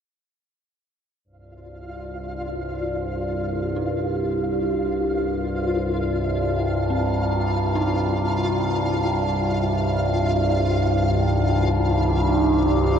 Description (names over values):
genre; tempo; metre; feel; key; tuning
dark ambient drone; free time; none; none; C minor; A4 = 440 Hz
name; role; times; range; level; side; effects
overtone-sweeping drone; drone; 1.7-13.0 s; C2 to G2; -22 LUFS; equal; chorus, built-in reverb
flickering grainy texture; texture; 1.8-13.0 s; F4 to F5; -28 LUFS; left 2 dB; built-in reverb
dark detuned synth bell; arpeggios; 3.8-13.0 s; C4 to Eb4; -36 LUFS; right 1 dB; none
deep dark ambient pad; sustained chords; 11.3-13.0 s; Eb4 to D5; -24 LUFS; right 4 dB; chorus, built-in reverb
room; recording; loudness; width
wet huge ambient reverb, RT60 9.3 s; worn, warbling old tape, cassette tape, warbly pitch drift; -20 LUFS; side -8 dB against mid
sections
1.3-13.0 A section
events
fade-out on synth texture 1.3-13.0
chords
1.3 Cmadd9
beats
free time